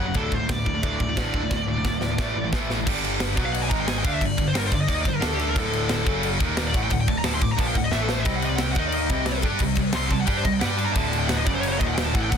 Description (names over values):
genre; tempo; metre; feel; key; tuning
heavy metal; 178 BPM; 4/4; straight; D phrygian dominant; A4 = 440 Hz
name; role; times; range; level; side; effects
high-gain lead guitar; melody; 0.0-12.4 s; G4 to D6; -29 LUFS; left 1 dB; distortion, digital delay
distorted electric guitar; riff; 0.0-2.9, 8.3-12.4 s; D2 to G4; -32 LUFS; right 1 dB; distortion
scooped high-gain guitar; riff; 0.0-12.4 s; D2 to G4; -28 LUFS; left 10 dB; distortion
tight distorted guitar; riff; 0.0-12.4 s; D2 to G4; -28 LUFS; right 14 dB; distortion
overdriven picked electric bass; bass; 0.0-12.4 s; D1 to G2; -29 LUFS; equal; none
tight metal drum kit; drums; 0.1-12.4 s; crash cymbal, kick drum, ride cymbal, snare drum; -26 LUFS; equal; none
room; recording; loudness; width
little or no reverb; dense, heavily limited modern master; -21 LUFS; side -7 dB against mid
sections
0.0-2.9 A section; 2.9-12.4 B section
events
drum fill 1.5-2.9, 7.9-8.3; lead electric guitar solo 2.9-12.4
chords
0.2 D; 2.2 A5; 2.9 G5; 3.4 B5; 3.7 G#5; 4.0 G5; 5.2 D5; 6.1 F#5; 6.4 Eb5; 6.7 D5; 7.9 A5; 8.3 C5; 8.8 Eb5; 9.1 C5; 10.6 G5; 11.0 D5; 11.5 F#5; 11.8 Eb5